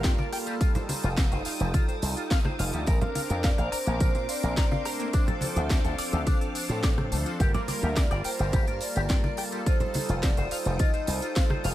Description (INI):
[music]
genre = nu-disco, nu disco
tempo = 106 BPM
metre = 4/4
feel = straight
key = G minor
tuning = A4 = 439 Hz
[part]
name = vibraphone with soft mallets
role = melody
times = 0.0-11.6 s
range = F4 to Eb5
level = -35 LUFS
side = right 2 dB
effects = ping-pong delay
[part]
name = warm analog pad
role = accompaniment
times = 0.0-11.7 s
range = F3 to Bb4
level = -34 LUFS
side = equal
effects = chorus, sidechain pumping, ping-pong delay
[part]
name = string machine, full ensemble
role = sustained chords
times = 0.0-11.7 s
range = C5 to Eb6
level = -39 LUFS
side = equal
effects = ensemble chorus, sidechain pumping
[part]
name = electric guitar with an envelope filter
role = riff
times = 0.0-11.7 s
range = D3 to Bb5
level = -36 LUFS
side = left 4 dB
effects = wide subtle chorus
[part]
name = slap bass with an envelope filter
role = bass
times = 0.0-11.7 s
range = F1 to Bb2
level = -29 LUFS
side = equal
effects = sidechain pumping
[part]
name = electronic kick drum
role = drums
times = 0.0-11.5 s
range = none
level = -25 LUFS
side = equal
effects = studio reverb
[part]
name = house drum kit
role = drums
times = 0.0-11.7 s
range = hi-hat, rim click, snare drum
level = -34 LUFS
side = equal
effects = studio reverb
[part]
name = tambourine and congas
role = percussion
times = 0.0-11.7 s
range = none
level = -36 LUFS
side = right 1 dB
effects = none
[sound]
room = digital ambience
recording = none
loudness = -24 LUFS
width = side -14 dB against mid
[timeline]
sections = 0.0-11.7 A section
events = none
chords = 0.0 Gm9; 0.6 F9; 2.9 Bbadd9; 5.1 Dm7; 7.4 Gm9; 9.7 F9